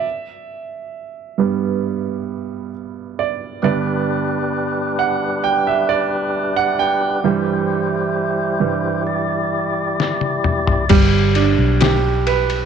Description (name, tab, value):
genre	pop ballad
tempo	66 BPM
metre	4/4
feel	straight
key	G major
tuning	A4 = 440 Hz
part	clear concert grand piano	accompaniment	0.0-12.7 s	G2 to G5	-19 LUFS	right 9 dB	none
part	tonewheel organ	sustained chords	3.6-10.9 s	G3 to D5	-21 LUFS	left 3 dB	overdrive, fast rotary speaker
part	trip hop sampler-style drum kit	drums	10.0-12.7 s	crash cymbal, kick drum, ride cymbal, snare drum, toms	-18 LUFS	left 5 dB	none
part	vintage muted fingered electric bass	bass	10.9-12.7 s	G1 to B1	-17 LUFS	left 2 dB	none
room	little or no reverb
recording	1960s-style stereo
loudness	-16 LUFS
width	side -7 dB against mid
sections	0.0-10.9 A section; 10.9-12.7 B section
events	grand piano solo 0.0-10.9; drum fill 10.0-10.9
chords	0.0 Em; 3.6 G; 7.2 C/G; 10.9 G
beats	| 0.04 0.95 1.85 2.75 | 3.65 4.54 5.44 6.34 | 7.25 8.15 9.06 9.98 | 10.90 11.81